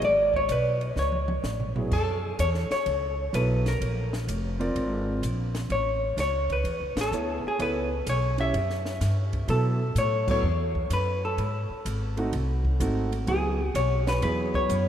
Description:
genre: jazz, small-group swing and bop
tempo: 127 BPM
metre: 4/4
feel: swing 67% on 8ths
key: F# minor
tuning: A4 = 441 Hz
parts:
  - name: vintage hollow-body jazz guitar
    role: melody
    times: 0.0-14.9 s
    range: G#4 to E5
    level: -28 LUFS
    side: left 1 dB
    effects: none
  - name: upright bass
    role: bass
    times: 0.0-14.9 s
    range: E#1 to B2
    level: -28 LUFS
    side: equal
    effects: none
  - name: compact cocktail drum kit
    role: drums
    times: 0.0-14.8 s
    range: crash cymbal, hi-hat, kick drum, ride cymbal, snare drum, toms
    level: -36 LUFS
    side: equal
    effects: none
  - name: dark concert grand piano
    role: accompaniment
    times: 1.8-14.9 s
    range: F#3 to D5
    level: -33 LUFS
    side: right 2 dB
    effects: none
room: wet cathedral reverb, RT60 5.3 s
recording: in a vast, echoing space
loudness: -24 LUFS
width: side -10 dB against mid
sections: 0.0-1.9 A section; 1.9-14.9 B section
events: drum fill 1.0-1.9; band accent 6.9, 10.2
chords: 0.0 G#dim; 1.0 C#5; 1.9 F#m7; 3.8 A#9; 5.7 Aadd9; 7.6 C#m7b5; 8.5 Emadd9/F#; 9.5 B5; 11.4 G#7b9; 13.3 C#m7

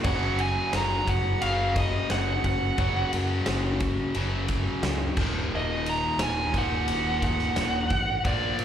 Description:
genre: hard rock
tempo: 88 BPM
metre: 4/4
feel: straight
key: Eb minor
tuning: A4 = 440 Hz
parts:
  - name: high-gain lead guitar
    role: melody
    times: 0.0-8.6 s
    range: D5 to Bb5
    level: -28 LUFS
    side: right 2 dB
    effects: distortion, slapback echo, analog delay
  - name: biting overdriven guitar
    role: riff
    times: 0.0-8.6 s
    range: Eb2 to Bb3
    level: -29 LUFS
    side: left 1 dB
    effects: slapback echo
  - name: modern bright picked electric bass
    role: bass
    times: 0.0-8.6 s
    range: Eb1 to Bb2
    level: -30 LUFS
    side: equal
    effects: none
  - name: huge arena drum kit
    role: drums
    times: 0.0-8.6 s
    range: crash cymbal, kick drum, ride cymbal, snare drum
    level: -30 LUFS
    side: equal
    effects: none
room: small room ambience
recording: live gig heard through the venue's PA, club reverb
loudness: -24 LUFS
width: side -9 dB against mid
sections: 0.0-8.6 A section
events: none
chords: 0.1 Gb5; 5.2 Ebm

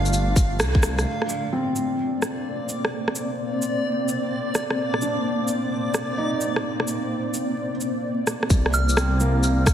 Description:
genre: future garage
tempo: 129 BPM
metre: 4/4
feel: swing 67% on 16ths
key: C dorian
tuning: A4 = 438 Hz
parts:
  - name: felt-muted upright piano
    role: accompaniment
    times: 0.0-9.7 s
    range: A3 to Eb4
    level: -30 LUFS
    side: equal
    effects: vintage 12-bit sampler grit, sidechain pumping, digital delay
  - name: granular cloud pad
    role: sustained chords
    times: 0.0-9.7 s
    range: A3 to D5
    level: -27 LUFS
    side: equal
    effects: built-in reverb, sidechain pumping
  - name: dark detuned saw bass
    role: bass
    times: 0.0-1.1, 8.5-9.7 s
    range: G1 to C2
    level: -22 LUFS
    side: equal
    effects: sidechain pumping
  - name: backwards swelling texture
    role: texture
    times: 0.0-8.5 s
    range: D5 to F5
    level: -31 LUFS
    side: equal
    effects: built-in reverb
  - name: electronic shaker, cabasa and rim click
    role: drums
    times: 0.1-9.7 s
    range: none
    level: -26 LUFS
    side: equal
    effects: studio reverb, soft clipping on snare
  - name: electronic kick drum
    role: drums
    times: 0.4-0.8, 8.5-9.7 s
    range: none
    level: -18 LUFS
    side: equal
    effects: studio reverb
  - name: soft synth bell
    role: melody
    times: 8.7-9.0 s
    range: F6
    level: -27 LUFS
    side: right 2 dB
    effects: chorus, digital delay
room: wet lush hall reverb, RT60 2.1 s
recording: dense, heavily limited modern master, vinyl crackle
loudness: -21 LUFS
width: side -10 dB against mid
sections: 0.0-1.1 A section; 1.1-8.5 B section; 8.5-9.7 A section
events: band accent 0.6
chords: 0.0 Dm; 1.1 Cm9; 8.5 C7sus2

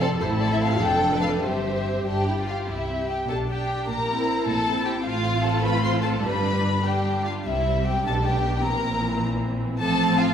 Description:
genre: quick classical-period movement for string orchestra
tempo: 94-104 BPM (dotted quarters)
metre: 6/8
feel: rubato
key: C major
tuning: A4 = 438 Hz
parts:
  - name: warm chamber violin section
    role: melody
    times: 0.0-10.3 s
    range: C5 to C6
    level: -27 LUFS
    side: left 2 dB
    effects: none
  - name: rich symphonic violin section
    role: second line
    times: 0.0-10.3 s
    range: C4 to C5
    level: -29 LUFS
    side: left 1 dB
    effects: none
  - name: warm studio viola section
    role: accompaniment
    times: 0.0-10.3 s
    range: E3 to A4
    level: -28 LUFS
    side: right 1 dB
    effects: none
  - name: dark chamber double bass section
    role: bass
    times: 0.0-10.3 s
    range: F1 to C2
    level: -29 LUFS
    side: right 1 dB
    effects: none
  - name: rich chamber cello section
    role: bass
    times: 0.0-10.3 s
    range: F2 to C3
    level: -28 LUFS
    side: right 1 dB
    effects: none
room: wet scoring stage reverb, RT60 1.5 s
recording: heard from further back in the room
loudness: -21 LUFS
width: side -8 dB against mid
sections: 0.0-2.7 A section; 2.7-10.3 B section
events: none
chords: 0.2 Am; 0.8 Dm/F; 1.4 C/G; 2.7 C; 3.3 G/B; 3.9 C7/Bb; 5.1 F/A; 6.2 G; 7.5 C; 8.1 G/B; 8.6 C7/Bb; 9.8 F/A

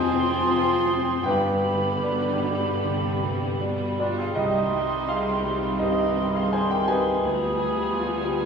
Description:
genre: classical, romantic movement for piano and orchestra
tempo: 76-88 BPM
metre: 4/4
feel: rubato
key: C minor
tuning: A4 = 440 Hz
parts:
  - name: clear concert grand piano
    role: melody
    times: 0.0-8.5 s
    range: C2 to Ab5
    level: -25 LUFS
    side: equal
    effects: none
  - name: rich symphonic violin section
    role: melody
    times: 0.0-8.5 s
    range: B3 to C4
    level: -37 LUFS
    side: left 2 dB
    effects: none
  - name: bright small flute group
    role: second line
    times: 0.0-8.3 s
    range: B5 to C6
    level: -31 LUFS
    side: right 1 dB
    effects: none
  - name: clear clarinet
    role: second line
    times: 0.0-8.5 s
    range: F4 to G4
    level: -34 LUFS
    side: left 4 dB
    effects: none
  - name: warm cor anglais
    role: second line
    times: 0.0-8.5 s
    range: D4 to Ab4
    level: -32 LUFS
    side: right 5 dB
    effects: none
  - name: warm symphonic violin section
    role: second line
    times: 0.0-8.5 s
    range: G3 to C4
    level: -35 LUFS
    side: left 3 dB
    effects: none
  - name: warm symphonic viola section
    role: accompaniment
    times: 0.0-8.5 s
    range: D3 to F3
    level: -33 LUFS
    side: right 3 dB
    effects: none
  - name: mellow French horn section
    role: sustained chords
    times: 0.0-8.5 s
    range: F3 to C4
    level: -34 LUFS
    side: left 4 dB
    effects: none
  - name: warm symphonic cello section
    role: bass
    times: 0.0-8.5 s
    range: C2 to C3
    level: -32 LUFS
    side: right 2 dB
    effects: none
  - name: warm symphonic double bass section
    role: bass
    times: 0.0-8.5 s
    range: F1 to D2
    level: -34 LUFS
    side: right 2 dB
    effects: none
  - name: timpani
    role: percussion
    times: 4.4-5.4 s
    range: C3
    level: -39 LUFS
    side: left 2 dB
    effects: none
room: wet scoring stage reverb, RT60 1.6 s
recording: heard from further back in the room, small room ambience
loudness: -22 LUFS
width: side -6 dB against mid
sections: 0.0-8.5 A section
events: none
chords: 0.0 Fm; 1.3 G; 4.4 Cm; 7.2 G7/D

